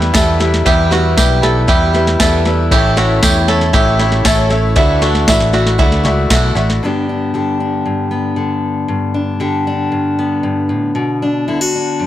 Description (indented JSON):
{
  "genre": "indie folk with a building arrangement",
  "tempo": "117 BPM",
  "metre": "4/4",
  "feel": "straight",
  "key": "unclear",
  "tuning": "A4 = 437 Hz",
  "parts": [
    { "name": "bright upright piano", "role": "accompaniment", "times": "0.0-6.8 s", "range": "A1 to E5", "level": "-17 LUFS", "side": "left 2 dB", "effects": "none" },
    { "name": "picked twelve-string acoustic guitar", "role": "accompaniment", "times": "0.0-6.8 s", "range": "A2 to A4", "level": "-19 LUFS", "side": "left 2 dB", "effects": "none" },
    { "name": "bluegrass banjo", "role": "arpeggios", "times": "0.0-6.8 s", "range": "D4 to A4", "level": "-18 LUFS", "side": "right 6 dB", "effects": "none" },
    { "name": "fingered electric bass", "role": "bass", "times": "0.0-6.8 s", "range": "A1 to E2", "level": "-16 LUFS", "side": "equal", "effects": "none" },
    { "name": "soft vintage rhythm box", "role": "drums", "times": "0.0-6.8 s", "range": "kick drum, snare drum", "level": "-16 LUFS", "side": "equal", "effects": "soft clipping on snare" },
    { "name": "tambourine", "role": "percussion", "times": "0.2-6.4 s", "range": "none", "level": "-24 LUFS", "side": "left 3 dB", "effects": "none" },
    { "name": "fingerpicked steel-string acoustic guitar", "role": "accompaniment", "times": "6.8-12.1 s", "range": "F#2 to G4", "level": "-15 LUFS", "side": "left 2 dB", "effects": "none" }
  ],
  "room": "light reverb",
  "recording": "blown-out, overdriven recording, overdrive",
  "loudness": "-11 LUFS",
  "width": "side -12 dB against mid",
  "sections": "0.0-6.8 A section; 6.8-12.1 B section",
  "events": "none",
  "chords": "0.0 Em; 2.7 A; 4.8 Dadd9; 6.8 G; 11.0 Bm"
}